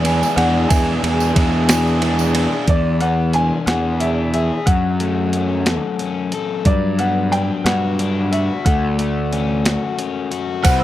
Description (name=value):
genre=indie rock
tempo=60 BPM (dotted quarters)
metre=6/8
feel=straight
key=E mixolydian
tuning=A4 = 438 Hz
part: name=clear upright piano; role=melody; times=0.0-10.8 s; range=D5 to G#5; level=-23 LUFS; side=equal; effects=none
part: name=metallic FM bell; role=second line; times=0.0-2.3, 10.6-10.8 s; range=C5 to E5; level=-32 LUFS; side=right 3 dB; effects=none
part: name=overdriven semi-hollow guitar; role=riff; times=0.0-10.8 s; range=E3 to A4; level=-22 LUFS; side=left 6 dB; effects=none
part: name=raw garage guitar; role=riff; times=0.0-2.7, 10.6-10.8 s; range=E2 to E4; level=-25 LUFS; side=right 8 dB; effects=overdrive, wide subtle chorus
part: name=fuzz picked electric bass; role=bass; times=0.0-10.8 s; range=C2 to G2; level=-19 LUFS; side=right 1 dB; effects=overdrive
part: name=clean 12-bit digital drum machine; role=drums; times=0.0-10.8 s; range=hi-hat, kick drum, ride cymbal, snare drum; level=-19 LUFS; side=right 1 dB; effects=none
part: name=tambourine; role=percussion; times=0.1-2.3, 10.6-10.8 s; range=none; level=-31 LUFS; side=right 10 dB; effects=none
part: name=warm analog pad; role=sustained chords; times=10.7-10.8 s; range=C5 to E6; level=-24 LUFS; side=right 2 dB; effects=chorus
room=little or no reverb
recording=none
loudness=-15 LUFS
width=side -13 dB against mid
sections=0.0-2.7 A section; 2.7-10.6 B section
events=none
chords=0.0 E7; 4.7 F#m; 6.7 Gmaj7; 8.7 Dmaj7